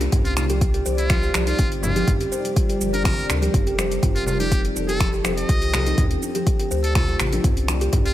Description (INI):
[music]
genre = afro house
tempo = 123 BPM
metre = 4/4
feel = straight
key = unclear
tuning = A4 = 439 Hz
[part]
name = ethereal airy pad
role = sustained chords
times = 0.0-8.1 s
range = C3 to D5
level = -30 LUFS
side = left 2 dB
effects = ensemble chorus, built-in reverb, phaser, sidechain pumping
[part]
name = buzzing kalimba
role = arpeggios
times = 0.0-8.1 s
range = C4 to C5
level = -26 LUFS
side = right 1 dB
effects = sidechain pumping, dub echo
[part]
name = warm sub bass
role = bass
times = 0.0-8.1 s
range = F1 to D2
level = -25 LUFS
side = equal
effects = sidechain pumping
[part]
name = deep house drum kit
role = drums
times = 0.0-8.1 s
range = finger snaps, hi-hat, shaker, toms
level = -26 LUFS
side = right 1 dB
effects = overdrive
[part]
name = electronic kick drum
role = drums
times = 0.1-8.0 s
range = none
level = -21 LUFS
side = equal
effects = overdrive
[part]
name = congas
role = percussion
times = 0.1-8.0 s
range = none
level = -30 LUFS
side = left 3 dB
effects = none
[part]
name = trumpet with metal mute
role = melody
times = 0.3-8.1 s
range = F4 to Eb5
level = -30 LUFS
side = equal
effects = dub echo
[sound]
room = little or no reverb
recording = none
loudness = -18 LUFS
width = side -13 dB against mid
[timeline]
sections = 0.0-8.1 A section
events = none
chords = 0.1 Cmadd9; 2.1 Gm9; 4.0 F7; 6.0 Dm7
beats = | 0.12 0.61 1.10 1.59 | 2.08 2.56 3.05 3.54 | 4.03 4.51 5.00 5.49 | 5.98 6.47 6.95 7.44 | 7.93